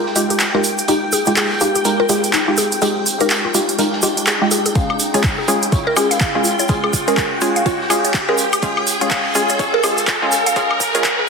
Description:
deep house; 124 BPM; 4/4; swing 60% on 16ths; A4 = 440 Hz
mallet-like synth pluck; melody; 0.0-11.3 s; F4 to Bb4; -22 LUFS; right 2 dB; chorus, phaser, cassette tape, dub echo
mallet-like synth pluck; arpeggios; 0.0-11.3 s; Eb4 to F5; -25 LUFS; left 3 dB; chorus, sidechain pumping, ping-pong delay
filtered dub chord stab; stabs; 0.0-11.3 s; Ab3 to Db5; -19 LUFS; equal; chorus, cassette tape, sidechain pumping, ping-pong delay
riser; sound effects; 0.7-11.3 s; -25 LUFS; equal
string machine, violins; texture; 0.0-11.3 s; G5; -27 LUFS; right 1 dB; ensemble chorus, sidechain pumping
raw garage drum kit; drums; 0.1-11.2 s; hi-hat, snare drum; -30 LUFS; right 3 dB; high-pass filter on hats, high-pass filter on snare, high-pass filter on room
deep house drum kit; drums; 0.2-11.2 s; handclaps, hi-hat, woodblock; -20 LUFS; equal; high-pass filter on perc, high-pass filter on hats, high-pass filter on snare, high-pass filter on room
tube shaker; percussion; 0.2-11.2 s; -25 LUFS; right 4 dB
electronic kick drum; drums; 4.8-11.2 s; -20 LUFS; equal; overdrive
wet plate reverb, RT60 1.2 s; dense, heavily limited modern master, high-pass filter; -14 LUFS; side -4 dB against mid
0.0-11.3 A section
build-up 0.0-11.3; filter sweep on synth stab 0.0-11.3; filter sweep on synth arpeggio sound 0.0-11.3; riser 0.7-11.3
0.0 Fm9; 4.8 Db
0.40 | 0.88 1.37 1.85 2.34 | 2.82 3.30 3.79 4.27 | 4.75 5.24 5.72 6.21 | 6.69 7.17 7.66 8.14 | 8.63 9.11 9.59 10.08 | 10.56 11.04

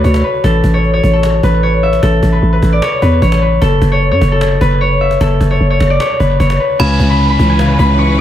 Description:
hip hop, trap; 151 BPM; 4/4; half-time; C# minor; A4 = 440 Hz
concert harp; melody; 0.0-8.2 s; F#4 to C#6; -14 LUFS; left 1 dB; low-pass filter, analog delay
growling 808-style bass; bass; 0.0-8.2 s; F#1 to F#2; -12 LUFS; equal
cajon; drums; 0.0-7.9 s; -21 LUFS; right 1 dB; analog delay
metallic FM bell; second line; 6.8-7.9 s; B5; -22 LUFS; right 5 dB; chorus, analog delay
dark concert grand piano; accompaniment; 6.8-8.2 s; C#3 to E3; -16 LUFS; left 3 dB; low-pass filter, analog delay
clear symphonic string section; sustained chords; 6.8-8.2 s; E3 to B4; -20 LUFS; right 1 dB
downlifter; sound effects; 6.8-8.2 s; -25 LUFS; equal
studio reverb; echo-heavy mix; -9 LUFS; side -11 dB against mid
0.0-6.8 A section; 6.8-8.2 B section
0.4 A5; 3.6 F#madd11; 6.8 C#m7
0.04 | 0.44 0.84 1.23 1.63 | 2.03 2.43 2.82 3.22 | 3.62 4.01 4.41 4.81 | 5.21 5.61 6.00 6.40 | 6.80 7.19 7.59 7.99

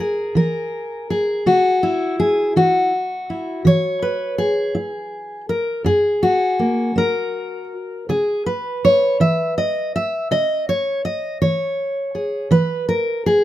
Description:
folk, solo fingerstyle acoustic guitar; 54 BPM (dotted quarters); 6/8; straight; C# dorian; A4 = 439 Hz
fingerpicked steel-string acoustic guitar; solo; 0.0-13.4 s; F#2 to E5; -17 LUFS; equal
light reverb; minimal, uncompressed stereo recording; -17 LUFS; side -13 dB against mid
0.0-13.4 A section
0.0 C#m; 3.7 N.C.; 5.8 F#add9; 8.1 C#m; 12.5 N.C.
0.36 | 1.47 2.56 | 3.65 4.75 | 5.85 6.97 | 8.09 9.21 | 10.31 11.41 | 12.51

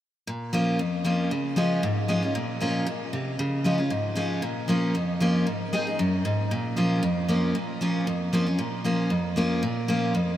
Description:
bluegrass; 231 BPM; 4/4; straight; Bb minor; A4 = 441 Hz
picked steel-string acoustic guitar; solo; 0.3-10.4 s; F2 to Ab4; -23 LUFS; equal
wet huge ambient reverb, RT60 7.6 s; in a vast, echoing space; -23 LUFS; side -12 dB against mid
0.3-10.4 A section
0.3 Bbm; 1.3 Db; 2.3 Bbm; 3.4 Db; 4.4 Bbm; 5.5 Ab; 6.5 Bbm
| 0.27 0.53 0.79 1.05 | 1.31 1.57 1.83 2.09 | 2.35 2.61 2.87 3.13 | 3.39 3.65 3.91 4.17 | 4.43 4.69 4.95 5.21 | 5.47 5.73 5.99 6.25 | 6.51 6.77 7.03 7.29 | 7.55 7.81 8.07 8.33 | 8.59 8.85 9.11 9.37 | 9.62 9.88 10.14

